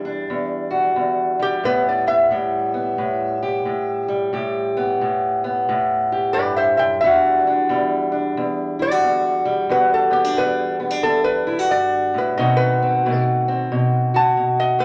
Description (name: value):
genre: acoustic country blues, solo or duo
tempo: 90 BPM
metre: 4/4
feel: swing 63% on 8ths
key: E minor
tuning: A4 = 445 Hz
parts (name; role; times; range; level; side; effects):
- metal-body resonator slide guitar; melody; 0.0-14.8 s; E4 to A5; -22 LUFS; equal; none
- fingerpicked steel-string acoustic guitar; accompaniment; 0.0-14.8 s; E2 to G4; -21 LUFS; equal; none
room: moderate large studio reverb, RT60 0.9 s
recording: none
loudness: -19 LUFS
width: mono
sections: 0.0-14.8 A section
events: none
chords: 0.0 Em9; 1.6 A7sus2; 7.0 Em9; 12.4 B7b9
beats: 0.29 0.96 | 1.64 2.31 2.98 3.66 | 4.33 5.00 5.67 6.34 | 7.01 7.69 8.36 9.03 | 9.69 10.36 11.03 11.70 | 12.37 13.04 13.70 14.37